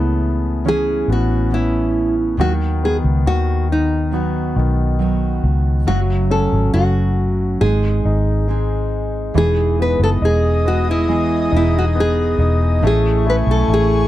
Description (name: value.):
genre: pop.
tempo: 69 BPM.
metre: 4/4.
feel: straight.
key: unclear.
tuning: A4 = 440 Hz.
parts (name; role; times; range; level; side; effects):
nylon-string guitar; melody; 0.0-14.1 s; D#4 to B4; -20 LUFS; equal; slapback echo.
warm concert grand piano; accompaniment; 0.0-14.1 s; C#3 to D#5; -23 LUFS; left 5 dB; none.
fingerpicked steel-string acoustic guitar; arpeggios; 0.0-14.1 s; F#2 to A4; -25 LUFS; right 10 dB; none.
vintage muted fingered electric bass; bass; 0.0-14.1 s; E1 to D#2; -18 LUFS; equal; none.
airy breathy pad; sustained chords; 9.4-14.1 s; A3 to D#6; -25 LUFS; left 2 dB; chorus.
room: little or no reverb.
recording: dry, close 1970s-style studio recording.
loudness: -15 LUFS.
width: side -14 dB against mid.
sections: 0.0-9.4 A section; 9.4-14.1 B section.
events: none.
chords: 0.0 Aadd9/C#; 2.4 B; 5.9 F#m; 7.6 G#; 9.4 Emaj7; 12.8 Amaj7.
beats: 0.66 1.52 | 2.39 3.26 4.13 5.00 | 5.87 6.74 7.61 8.48 | 9.35 10.22 11.09 11.96 | 12.83 13.70.